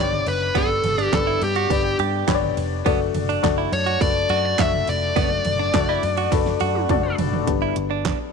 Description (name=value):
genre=piano-driven pop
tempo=104 BPM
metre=4/4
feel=straight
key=D major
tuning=A4 = 440 Hz
part: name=dark smooth lead guitar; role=melody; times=0.0-7.2 s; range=G4 to E5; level=-23 LUFS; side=left 2 dB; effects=overdrive
part: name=warm upright piano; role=accompaniment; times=0.0-8.3 s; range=G2 to E5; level=-24 LUFS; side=left 14 dB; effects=none
part: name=direct-recorded clean electric guitar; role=riff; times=0.0-8.2 s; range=B3 to G4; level=-27 LUFS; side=right 16 dB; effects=none
part: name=vintage muted picked electric bass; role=bass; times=0.0-8.1 s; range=F1 to G2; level=-26 LUFS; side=right 1 dB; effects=none
part: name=pop drum kit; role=drums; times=0.1-8.2 s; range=handclaps, hi-hat, kick drum, ride cymbal, snare drum, toms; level=-25 LUFS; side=right 5 dB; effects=none
room=light reverb, digital ambience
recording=1960s-style stereo with parts hard left and right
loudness=-18 LUFS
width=side -5 dB against mid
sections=0.0-7.5 A section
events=drum fill 6.3-7.5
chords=0.0 G; 2.9 D; 7.5 G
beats=| 0.55 1.12 1.70 2.28 | 2.86 3.43 4.01 4.59 | 5.17 5.74 6.32 6.90 | 7.47 8.05